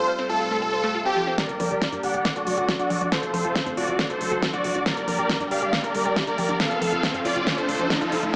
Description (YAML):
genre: uplifting trance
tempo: 138 BPM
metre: 4/4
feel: straight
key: G minor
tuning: A4 = 436 Hz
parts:
  - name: supersaw chords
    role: melody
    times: 0.0-8.4 s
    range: F4 to F#5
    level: -27 LUFS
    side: equal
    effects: phaser, sidechain pumping, low-pass filter, tape echo
  - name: dark baby grand piano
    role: second line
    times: 0.0-1.3 s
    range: G5 to C6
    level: -32 LUFS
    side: equal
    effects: vintage 12-bit sampler grit, sidechain pumping, tape echo
  - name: lush unison pad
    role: sustained chords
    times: 0.0-8.3 s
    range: G2 to A4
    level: -35 LUFS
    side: equal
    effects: chorus, sidechain pumping
  - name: analog pluck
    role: arpeggios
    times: 0.0-8.4 s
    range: F3 to G5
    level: -34 LUFS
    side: equal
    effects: chorus, sidechain pumping, tape echo
  - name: big-room dance drum kit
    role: drums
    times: 1.4-8.3 s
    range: congas, hi-hat, snare drum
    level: -30 LUFS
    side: equal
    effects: low-pass filter on snare, low-pass filter on hats, low-pass filter on perc
  - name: electronic kick drum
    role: drums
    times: 1.4-8.0 s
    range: none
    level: -33 LUFS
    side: equal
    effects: high-pass filter on kick
  - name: riser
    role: sound effects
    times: 3.7-8.4 s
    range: none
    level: -35 LUFS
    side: equal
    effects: none
  - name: tight sequencer bass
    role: bass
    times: 1.5-8.3 s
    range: G1 to G2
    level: -44 LUFS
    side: equal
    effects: tube saturation, sidechain pumping
room: moderate scoring stage reverb, RT60 1.6 s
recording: small speaker sound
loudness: -24 LUFS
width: mono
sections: 0.0-1.4 A section; 1.4-8.4 B section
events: build-up 1.4-8.4; drum fill 1.4-8.4; filter sweep on supersaw synth 1.4-8.4; filter sweep on synth pluck 1.4-8.4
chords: 0.0 F/G; 1.4 Gm; 2.3 D/G; 3.1 F/G; 4.0 D/G; 4.9 Gm; 6.6 F/G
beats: 0.08 0.51 0.95 | 1.38 1.82 2.25 2.69 | 3.12 3.56 3.99 4.42 | 4.86 5.29 5.73 6.16 | 6.60 7.03 7.47 7.90 | 8.34